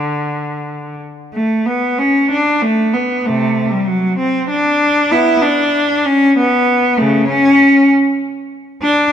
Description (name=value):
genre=classical, baroque-style suite movement for unaccompanied cello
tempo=64 BPM (dotted quarters)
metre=6/8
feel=rubato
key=D major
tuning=A4 = 440 Hz
part: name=clear cello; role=solo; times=0.0-9.1 s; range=C3 to E4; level=-12 LUFS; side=equal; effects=none
room=wet scoring stage reverb, RT60 2.0 s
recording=none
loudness=-11 LUFS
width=side -9 dB against mid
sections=0.0-1.3 A section; 1.3-9.1 B section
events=none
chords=none